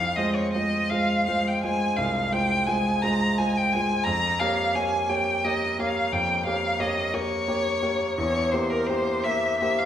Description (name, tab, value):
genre	classical, romantic duo for violin and grand piano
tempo	54-60 BPM (dotted quarters)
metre	12/8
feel	rubato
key	F minor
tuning	A4 = 440 Hz
part	rich violin	melody	0.0-9.9 s	Bb4 to Bb5	-24 LUFS	left 1 dB	none
part	clear grand piano	accompaniment	0.0-9.9 s	C2 to Db5	-26 LUFS	right 1 dB	none
room	wet recital hall reverb, RT60 1.3 s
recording	recorded in a church or concert hall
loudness	-22 LUFS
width	side -10 dB against mid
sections	0.0-9.9 A section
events	none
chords	0.0 Fm; 4.1 Gm7b5/F; 8.2 C7/E